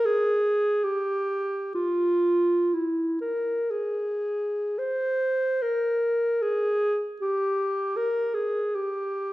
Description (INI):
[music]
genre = classical, free, expressive piece for unaccompanied clarinet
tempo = 46-82 BPM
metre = 3/4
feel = rubato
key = unclear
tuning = A4 = 440 Hz
[part]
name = dark clarinet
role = solo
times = 0.0-9.3 s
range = E4 to C5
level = -23 LUFS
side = equal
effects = none
[sound]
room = wet recital hall reverb, RT60 1.5 s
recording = dark, warm production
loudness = -23 LUFS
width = side -17 dB against mid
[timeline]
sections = 0.0-4.8 A section; 4.8-9.3 B section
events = none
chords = none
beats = 0.04 0.83 | 1.75 2.72 3.71 | 4.79 5.62 6.42 | 7.21 7.96 8.73